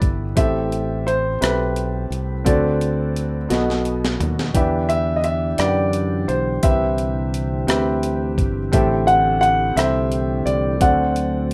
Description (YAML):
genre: slow gospel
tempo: 58 BPM (dotted quarters)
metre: 6/8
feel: straight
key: unclear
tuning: A4 = 438 Hz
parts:
  - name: clear grand piano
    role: melody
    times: 0.0-11.5 s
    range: B4 to F#5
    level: -23 LUFS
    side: equal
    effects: none
  - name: warm upright piano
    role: accompaniment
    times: 0.0-11.5 s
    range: A2 to G5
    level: -26 LUFS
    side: equal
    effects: none
  - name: modern bright fingered electric bass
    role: bass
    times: 0.0-11.5 s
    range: G1 to F#2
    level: -26 LUFS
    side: equal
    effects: none
  - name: breakbeat sampler-style drum kit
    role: drums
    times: 0.0-11.5 s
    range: hi-hat, kick drum, rim click, snare drum, toms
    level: -24 LUFS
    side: equal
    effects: none
  - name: mellow tonewheel organ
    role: sustained chords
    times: 4.5-11.5 s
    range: D3 to G4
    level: -28 LUFS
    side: equal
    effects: slow rotary speaker
room: moderate studio reverb, RT60 0.6 s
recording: rough home demo mix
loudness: -20 LUFS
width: mono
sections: 0.0-11.5 A section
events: drum fill 3.5-4.5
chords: 0.4 Am7; 2.5 D7; 3.5 B7; 4.5 Em7; 6.6 Cmaj7; 8.7 Am7; 10.8 D7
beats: | 0.37 1.41 | 2.46 3.50 | 4.55 5.59 | 6.63 7.68 | 8.72 9.76 | 10.80